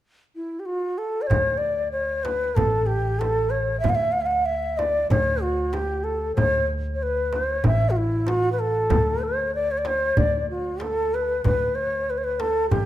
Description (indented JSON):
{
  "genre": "Arabic maqam ensemble",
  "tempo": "95 BPM",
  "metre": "4/4",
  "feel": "straight",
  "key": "D maqam rast",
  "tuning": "A4 = 440 Hz",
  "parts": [
    { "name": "breathy reedy ney", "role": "melody", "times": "0.4-12.9 s", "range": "E4 to F#5-44c", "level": "-23 LUFS", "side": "equal", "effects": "none" },
    { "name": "upright bass", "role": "bass", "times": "1.3-12.9 s", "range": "A1 to D2", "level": "-28 LUFS", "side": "equal", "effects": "none" },
    { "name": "darbuka", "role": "percussion", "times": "1.3-12.9 s", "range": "none", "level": "-30 LUFS", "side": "left 3 dB", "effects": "none" },
    { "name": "frame drum", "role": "percussion", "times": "1.3-12.9 s", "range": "none", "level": "-27 LUFS", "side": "right 2 dB", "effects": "none" }
  ],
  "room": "moderate recital hall reverb, RT60 1.5 s",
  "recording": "minimal, uncompressed stereo recording",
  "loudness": "-21 LUFS",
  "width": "side -13 dB against mid",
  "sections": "0.0-1.3 A section; 1.3-12.9 B section",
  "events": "none",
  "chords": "none",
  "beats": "0.04 0.67 | 1.30 1.94 2.57 3.21 | 3.84 4.47 5.11 5.74 | 6.38 7.01 7.65 8.28 | 8.92 9.55 10.19 10.82 | 11.45 12.09 12.72"
}